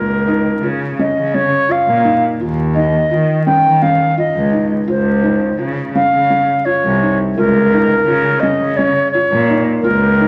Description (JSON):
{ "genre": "contemporary instrumental, chamber music in an uneven meter", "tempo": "169 BPM (eighths)", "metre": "7/8", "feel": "straight", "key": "Db lydian", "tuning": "A4 = 441 Hz", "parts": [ { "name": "bright baroque flute", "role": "melody", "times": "0.0-10.3 s", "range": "Bb4 to G5", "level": "-17 LUFS", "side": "equal", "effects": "none" }, { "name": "felt-muted upright piano", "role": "arpeggios", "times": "0.0-10.3 s", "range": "Db4 to F4", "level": "-23 LUFS", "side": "equal", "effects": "none" }, { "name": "warm cello", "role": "bass", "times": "0.0-10.3 s", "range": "C2 to Eb3", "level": "-19 LUFS", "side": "equal", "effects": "none" } ], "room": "moderate scoring stage reverb, RT60 1.6 s", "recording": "vinyl crackle", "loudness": "-14 LUFS", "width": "mono", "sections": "0.0-7.4 A section; 7.4-10.3 A section", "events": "none", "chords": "0.0 Db6; 2.4 Ebsus2; 4.9 Dbmaj9; 7.4 Db6", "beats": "0.28 0.64 0.99 1.34 1.70 2.05 | 2.41 2.76 3.12 3.47 3.83 4.18 4.54 | 4.89 5.24 5.60 5.95 6.30 6.66 7.01 | 7.37 7.72 8.07 8.43 8.78 9.13 9.49 | 9.84 10.20" }